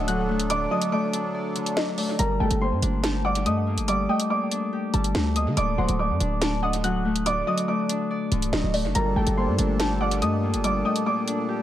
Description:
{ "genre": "hip hop, drill", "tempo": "142 BPM", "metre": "4/4", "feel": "half-time", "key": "G harmonic minor", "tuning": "A4 = 436 Hz", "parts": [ { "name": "dark grand piano", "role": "melody", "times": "0.0-11.6 s", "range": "A4 to F#6", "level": "-28 LUFS", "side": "right 1 dB", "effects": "dub echo" }, { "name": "warbly dusty pluck", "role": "second line", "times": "0.0-11.6 s", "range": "D5 to A5", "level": "-34 LUFS", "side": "equal", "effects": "chorus, phaser, dub echo" }, { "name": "Celtic harp", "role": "accompaniment", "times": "0.0-11.6 s", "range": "D3 to D5", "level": "-27 LUFS", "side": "left 3 dB", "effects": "none" }, { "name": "accordion", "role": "sustained chords", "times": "0.0-2.2, 8.9-11.6 s", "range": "Bb2 to A4", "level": "-31 LUFS", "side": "right 1 dB", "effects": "light tremolo tuning" }, { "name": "hard-hitting 808-style bass", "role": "bass", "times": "0.0-10.8 s", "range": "C1 to D3", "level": "-26 LUFS", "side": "right 1 dB", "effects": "none" }, { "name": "drill drum kit", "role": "drums", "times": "0.1-11.4 s", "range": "hi-hat, snare drum", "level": "-29 LUFS", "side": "equal", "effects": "dub echo" } ], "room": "light reverb", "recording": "echo-heavy mix", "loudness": "-22 LUFS", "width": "side -12 dB against mid", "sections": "0.0-2.2 A section; 2.2-11.6 A section", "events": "break 1.3-2.2", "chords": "0.0 D; 2.2 Gmadd9; 5.6 D; 9.0 Gmadd9", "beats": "0.08 | 0.50 0.92 1.34 1.77 | 2.19 2.61 3.04 3.46 | 3.88 4.30 4.72 5.15 | 5.57 5.99 6.42 6.84 | 7.26 7.68 8.11 8.53 | 8.95 9.37 9.80 10.22 | 10.64 11.06 11.49" }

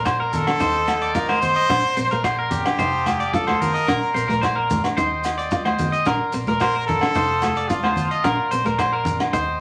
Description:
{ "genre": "highlife guitar band", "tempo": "110 BPM", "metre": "4/4", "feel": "straight", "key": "Bb major", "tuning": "A4 = 440 Hz", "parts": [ { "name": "nylon-string guitar", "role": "accompaniment", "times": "0.0-9.5 s", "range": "Bb3 to F4", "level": "-29 LUFS", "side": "equal", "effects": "none" }, { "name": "combo organ", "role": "sustained chords", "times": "0.0-9.6 s", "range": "D5 to Eb6", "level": "-34 LUFS", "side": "equal", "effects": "none" }, { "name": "electric guitar at the edge of break-up", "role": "arpeggios", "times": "0.0-9.6 s", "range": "Bb4 to Eb5", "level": "-26 LUFS", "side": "equal", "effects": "none" }, { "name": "vintage muted fingered electric bass", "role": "bass", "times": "0.0-9.6 s", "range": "F1 to Eb2", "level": "-34 LUFS", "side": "equal", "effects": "none" }, { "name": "vintage drum kit", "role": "drums", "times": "0.1-9.5 s", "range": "hi-hat, kick drum, rim click", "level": "-33 LUFS", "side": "equal", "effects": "none" }, { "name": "agogo bells", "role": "percussion", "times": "0.1-9.3 s", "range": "none", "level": "-30 LUFS", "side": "equal", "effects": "none" }, { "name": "maracas", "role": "percussion", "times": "0.1-9.5 s", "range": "none", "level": "-44 LUFS", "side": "equal", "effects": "none" }, { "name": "brilliant trumpet", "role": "melody", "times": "0.3-8.5 s", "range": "F4 to C5", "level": "-25 LUFS", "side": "equal", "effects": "none" }, { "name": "congas", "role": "percussion", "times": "0.3-9.2 s", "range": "none", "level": "-30 LUFS", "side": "equal", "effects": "none" } ], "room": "wet studio reverb, RT60 0.6 s", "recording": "vinyl crackle", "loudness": "-21 LUFS", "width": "mono", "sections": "0.0-9.6 A section", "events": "trumpet solo 0.0-9.6", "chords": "0.0 Bbadd9; 0.6 Eb6; 1.7 Bbadd9; 2.8 F7; 3.9 Bbadd9; 5.0 Eb6; 6.1 Bbadd9; 7.2 F7; 8.2 Bbadd9", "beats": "0.06 0.60 1.15 | 1.70 2.24 2.79 3.34 | 3.88 4.43 4.97 5.52 | 6.07 6.61 7.16 7.70 | 8.24 8.79 9.34" }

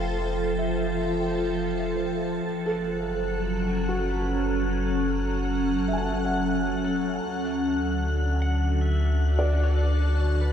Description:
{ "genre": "ambient", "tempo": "75 BPM", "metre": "3/4", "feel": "straight", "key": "unclear", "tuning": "A4 = 437 Hz", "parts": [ { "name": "evolving wavetable pad", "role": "sustained chords", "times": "0.0-10.5 s", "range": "D3 to A5", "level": "-26 LUFS", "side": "equal", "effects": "ensemble chorus, built-in reverb, phaser" }, { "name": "felt-muted upright piano", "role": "arpeggios", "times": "0.0-10.5 s", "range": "F#4 to A5", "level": "-34 LUFS", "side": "equal", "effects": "ping-pong delay" }, { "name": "warm sub bass", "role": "bass", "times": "0.0-10.5 s", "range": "F1 to D2", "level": "-27 LUFS", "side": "equal", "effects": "none" }, { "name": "wind-like tuned noise texture", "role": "texture", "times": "0.0-10.5 s", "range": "F#6 to A6", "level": "-38 LUFS", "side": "left 3 dB", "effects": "built-in reverb" }, { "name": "pedal steel guitar", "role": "melody", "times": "3.7-10.5 s", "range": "F#4 to F#5", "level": "-41 LUFS", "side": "left 2 dB", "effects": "ping-pong delay" } ], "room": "wet cathedral reverb, RT60 6.3 s", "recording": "dark, warm production", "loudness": "-23 LUFS", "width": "side -9 dB against mid", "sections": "0.0-2.4 A section; 2.4-10.5 B section", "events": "fade-in on pedal steel guitar 2.4-10.5", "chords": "0.0 Fadd9; 2.4 F#madd9; 7.2 D", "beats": "| 0.04 0.84 1.64 | 2.44 3.24 4.04 | 4.84 5.64 6.44 | 7.24 8.04 8.84 | 9.64 10.44" }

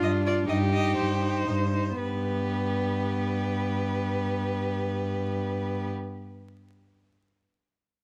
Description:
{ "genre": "quick classical-period movement for string quartet", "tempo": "109-134 BPM", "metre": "3/4", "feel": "rubato", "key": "unclear", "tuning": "A4 = 440 Hz", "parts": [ { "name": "clear violin", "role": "melody", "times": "0.0-5.9 s", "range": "B4 to Eb5", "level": "-36 LUFS", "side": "equal", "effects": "none" }, { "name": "rich violin", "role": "second line", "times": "0.0-5.9 s", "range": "D4 to G4", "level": "-36 LUFS", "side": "equal", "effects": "none" }, { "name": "clear viola", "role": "accompaniment", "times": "0.0-5.9 s", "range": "B3 to F4", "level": "-34 LUFS", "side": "equal", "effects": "none" }, { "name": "rich cello", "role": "bass", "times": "0.0-5.9 s", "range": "G2", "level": "-32 LUFS", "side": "equal", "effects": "none" } ], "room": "light reverb", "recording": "close, detailed microphones, vinyl crackle", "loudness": "-28 LUFS", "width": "mono", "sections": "0.0-2.0 A section; 2.0-5.1 B section", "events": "slowing down 0.0-2.0", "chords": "0.5 Cm/G; 2.0 G", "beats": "0.03 | 0.48 0.96 1.47 | 2.00 2.52 3.05 | 3.58 4.09 4.61" }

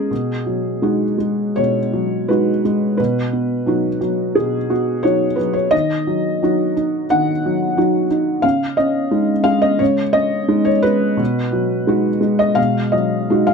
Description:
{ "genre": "neoclassical minimalist piano", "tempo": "87 BPM", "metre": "4/4", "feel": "rubato", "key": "unclear", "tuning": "A4 = 440 Hz", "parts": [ { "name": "felt-muted upright piano", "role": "solo", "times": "0.0-13.5 s", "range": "Cb3 to Gb5", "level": "-15 LUFS", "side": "equal", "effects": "none" } ], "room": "moderate small room reverb, RT60 0.5 s", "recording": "none", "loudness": "-15 LUFS", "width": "side -5 dB against mid", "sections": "0.0-13.5 A section", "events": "none", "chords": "0.1 Abm7/Cb; 5.7 Ebm; 8.4 Dbsus2; 11.2 Abm7/Cb", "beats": "| 0.10 0.82 1.58 2.29 | 2.99 3.67 4.37 5.05 | 5.73 6.42 7.10 7.76 | 8.43 9.12 9.80 10.50 | 11.20 11.88 12.57 13.29" }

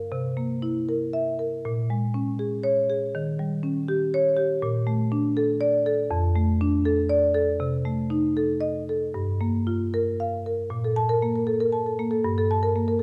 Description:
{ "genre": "classical, contemporary piece for solo marimba", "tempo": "80 BPM (dotted quarters)", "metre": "6/8", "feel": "straight", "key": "unclear", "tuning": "A4 = 436 Hz", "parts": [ { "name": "marimba with medium mallets", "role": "solo", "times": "0.0-13.0 s", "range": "F2 to A5", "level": "-25 LUFS", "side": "equal", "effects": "none" } ], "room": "moderate recital hall reverb, RT60 1.5 s", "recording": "dark, warm production", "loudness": "-25 LUFS", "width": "mono", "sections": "0.0-10.7 A section; 10.7-13.0 B section", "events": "none", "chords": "0.1 C7; 1.6 Bbm7; 3.1 Eb7; 4.6 Bbmaj7; 6.1 F6; 7.6 Cm6; 9.2 Gm7; 10.7 N.C.; 12.2 Gmadd9", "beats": "| 0.12 0.88 | 1.64 2.39 | 3.14 3.89 | 4.63 5.37 | 6.11 6.86 | 7.61 8.37 | 9.15 9.95 | 10.73 11.49 | 12.25 13.00" }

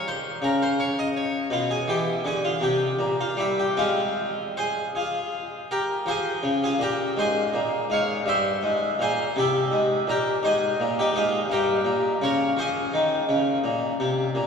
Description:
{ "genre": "classical, baroque-style suite movement for harpsichord", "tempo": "51-58 BPM (dotted quarters)", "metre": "6/8", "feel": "rubato", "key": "F minor", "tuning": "A4 = 440 Hz", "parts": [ { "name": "harpsichord", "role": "solo", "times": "0.0-14.5 s", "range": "G2 to F5", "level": "-22 LUFS", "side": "left 1 dB", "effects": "none" } ], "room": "wet cathedral reverb, RT60 4.8 s", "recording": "worn, warbling old tape, cassette tape, warbly pitch drift, studio reverb", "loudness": "-22 LUFS", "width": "side -6 dB against mid", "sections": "0.0-6.1 A section; 6.1-14.5 B section", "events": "none", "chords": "0.0 N.C.; 1.5 G13b9/B; 2.6 C5; 3.8 Fm; 7.2 Ab69; 8.3 C7/G; 10.4 Fm/Ab; 11.5 Gdim; 12.6 Fm", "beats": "0.43 | 1.51 2.62 | 3.77 4.93 | 6.07 7.19 | 8.28 9.37 | 10.44 11.50 | 12.57 13.64" }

